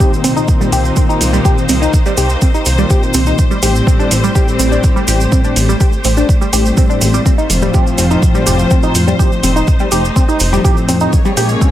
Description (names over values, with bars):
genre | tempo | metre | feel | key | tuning
melodic techno | 124 BPM | 4/4 | straight | unclear | A4 = 440 Hz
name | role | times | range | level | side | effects
rich studio string section | sustained chords | 0.0-11.7 s | A3 to Db5 | -21 LUFS | equal | sidechain pumping
tight sequenced synth | arpeggios | 0.0-11.7 s | G3 to G4 | -17 LUFS | equal | chorus, sidechain pumping, tape echo
brassy analog pad | stabs | 0.0-11.7 s | A2 to Db4 | -18 LUFS | left 2 dB | chorus, sidechain pumping, tape echo
electronic kick drum | drums | 0.0-11.7 s | none | -12 LUFS | equal | none
cabasa | percussion | 0.0-11.7 s | none | -22 LUFS | right 4 dB | none
plucky analog bass | bass | 0.2-11.6 s | F1 to C2 | -15 LUFS | equal | sidechain pumping
electronic hi-hat | drums | 0.2-11.5 s | none | -21 LUFS | right 1 dB | none
room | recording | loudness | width
light reverb | none | -10 LUFS | side -12 dB against mid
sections
0.0-11.7 A section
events
none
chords
0.0 Cm7; 3.4 Am7; 7.3 F; 11.1 Bbm7